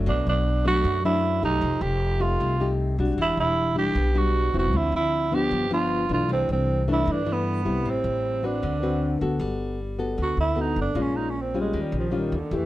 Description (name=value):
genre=bossa nova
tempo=154 BPM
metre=4/4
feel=straight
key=G major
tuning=A4 = 441 Hz
part: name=nylon-string guitar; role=accompaniment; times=0.0-12.7 s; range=F#2 to B4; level=-27 LUFS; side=left 3 dB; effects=none
part: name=upright bass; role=bass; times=0.0-12.7 s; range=E1 to G2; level=-27 LUFS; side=equal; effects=none
part: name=growling tenor saxophone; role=melody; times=0.1-12.7 s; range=D3 to G4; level=-25 LUFS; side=right 3 dB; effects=none
room=light reverb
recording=none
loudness=-22 LUFS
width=side -15 dB against mid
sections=0.0-9.4 A section; 9.4-12.7 B section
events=tenor saxophone solo 9.4-12.7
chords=0.1 Bm7; 1.6 F9; 3.2 Em9; 4.7 Dm9; 5.5 G7; 6.3 C69; 7.8 Am7; 8.6 D6; 9.4 Gmaj9; 11.0 Bbm7; 11.7 Eb9